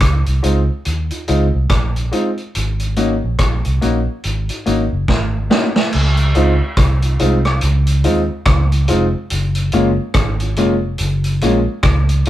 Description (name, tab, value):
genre	lovers rock reggae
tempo	71 BPM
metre	4/4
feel	swing 60% on 16ths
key	Db major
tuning	A4 = 444 Hz
part	vintage muted fingered electric bass	bass	0.0-12.3 s	F1 to Eb2	-16 LUFS	equal	none
part	vintage drum kit	drums	0.0-12.3 s	crash cymbal, hi-hat, kick drum, rim click, snare drum	-18 LUFS	equal	none
part	warm grand piano	accompaniment	0.4-12.3 s	Ab3 to Gb4	-17 LUFS	left 1 dB	none
room	moderate studio reverb, RT60 0.7 s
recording	band playing live in one room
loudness	-14 LUFS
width	side -13 dB against mid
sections	0.0-5.9 A section; 5.9-12.3 B section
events	drum fill 5.1-5.9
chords	0.0 Dbmaj7; 2.5 Ab7sus4; 5.9 Dbmaj9; 9.3 Gbmaj9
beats	0.01 0.85 1.70 | 2.54 3.39 4.24 5.08 | 5.92 6.77 7.62 8.46 | 9.30 10.15 10.99 11.84